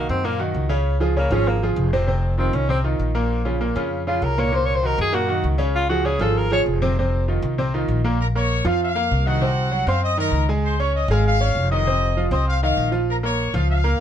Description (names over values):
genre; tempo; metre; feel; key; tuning
latin; 196 BPM; 4/4; straight; Bb minor; A4 = 441 Hz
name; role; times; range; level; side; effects
warm tenor saxophone; melody; 0.0-6.6 s; Bb3 to Db5; -22 LUFS; equal; none
bright grand piano; accompaniment; 0.0-14.0 s; Bb2 to Db6; -23 LUFS; right 1 dB; none
upright bass; bass; 0.0-14.0 s; F1 to Gb2; -22 LUFS; equal; none
clear trumpet section; melody; 8.2-14.0 s; Gb4 to Eb6; -24 LUFS; left 3 dB; none
room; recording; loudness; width
moderate studio reverb, RT60 0.5 s; dark, warm production; -18 LUFS; side -9 dB against mid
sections
0.0-8.2 A section; 8.2-14.0 B section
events
tenor saxophone solo 0.0-8.2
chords
0.0 Cm7b5 (rootless); 0.9 Db; 2.1 F5; 3.3 Bbm; 4.5 Cm7b5; 5.8 Db; 7.0 F5; 8.2 Bbm; 9.4 Cm7b5; 10.6 Dbadd9; 11.9 F5; 13.1 Bbm